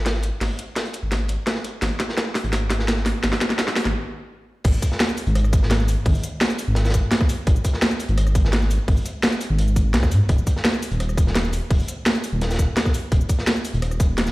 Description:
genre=liquid drum and bass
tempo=170 BPM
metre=4/4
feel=straight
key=G# minor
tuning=A4 = 440 Hz
part: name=dark detuned saw bass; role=bass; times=0.0-14.3 s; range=D#1 to G#2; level=-21 LUFS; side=equal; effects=none
part: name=crunchy breakbeat drum kit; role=drums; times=0.1-14.3 s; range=hi-hat, snare drum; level=-30 LUFS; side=equal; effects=high-pass filter on hats, high-pass filter on snare, high-pass filter on room
part: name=drum and bass drum kit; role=drums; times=0.1-14.3 s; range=cabasa, crash cymbal, hi-hat, rim click, snare drum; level=-23 LUFS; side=equal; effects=overdrive
part: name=electronic kick drum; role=drums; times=4.6-14.1 s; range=none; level=-19 LUFS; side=equal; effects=overdrive
room=light reverb, small room reverb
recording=played on a big sound system in a bare room, stone room reverb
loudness=-19 LUFS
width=side -19 dB against mid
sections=0.0-4.6 A section; 4.6-14.3 B section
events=build-up 0.0-4.6; drum fill 0.0-3.9; stop 3.9-4.6; drop 4.6-14.3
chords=none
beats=0.06 | 0.41 0.76 1.12 1.47 | 1.82 2.18 2.53 2.88 | 3.23 3.59 3.94 4.29 | 4.65 5.00 5.35 5.71 | 6.06 6.41 6.76 7.12 | 7.47 7.82 8.18 8.53 | 8.88 9.23 9.59 9.94 | 10.29 10.65 11.00 11.35 | 11.71 12.06 12.41 12.76 | 13.12 13.47 13.82 14.18

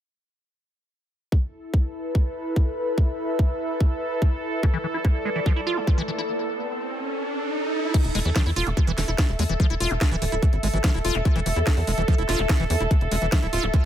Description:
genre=psychedelic trance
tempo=145 BPM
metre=4/4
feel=straight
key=unclear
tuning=A4 = 438 Hz
part: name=evolving wavetable pad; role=sustained chords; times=1.9-13.9 s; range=A4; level=-31 LUFS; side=right 1 dB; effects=chorus, built-in reverb, sidechain pumping
part: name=electronic kick drum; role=drums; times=1.3-13.8 s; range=none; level=-20 LUFS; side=equal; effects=small room ambience
part: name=airy breathy pad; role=texture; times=1.3-13.9 s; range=E4 to E5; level=-31 LUFS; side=equal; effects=chorus, sidechain pumping
part: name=liquid acid bass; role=riff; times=4.6-13.8 s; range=E3 to F4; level=-28 LUFS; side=moving between left 5 dB and right 5 dB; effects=chorus, auto-pan, vintage 12-bit sampler grit, sidechain pumping, tape echo
part: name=riser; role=sound effects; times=5.6-7.9 s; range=none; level=-31 LUFS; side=right 2 dB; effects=none
part: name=garage drum kit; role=drums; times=7.9-13.8 s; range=crash cymbal, hi-hat, snare drum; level=-30 LUFS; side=equal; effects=small room ambience
part: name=tight sequencer bass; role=bass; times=8.0-13.7 s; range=D1 to E2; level=-25 LUFS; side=equal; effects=none
room=little or no reverb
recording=none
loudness=-21 LUFS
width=side -11 dB against mid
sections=1.3-7.9 A section; 7.9-13.9 B section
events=riser 5.6-7.9; break 6.3-7.9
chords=1.3 E5; 7.9 Dmadd9 (rootless)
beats=| 1.32 1.74 2.15 2.56 | 2.98 3.39 3.81 4.22 | 4.63 5.05 5.46 5.87 | 6.29 6.70 7.12 7.53 | 7.94 8.36 8.77 9.18 | 9.60 10.01 10.43 10.84 | 11.25 11.67 12.08 12.49 | 12.91 13.32 13.74

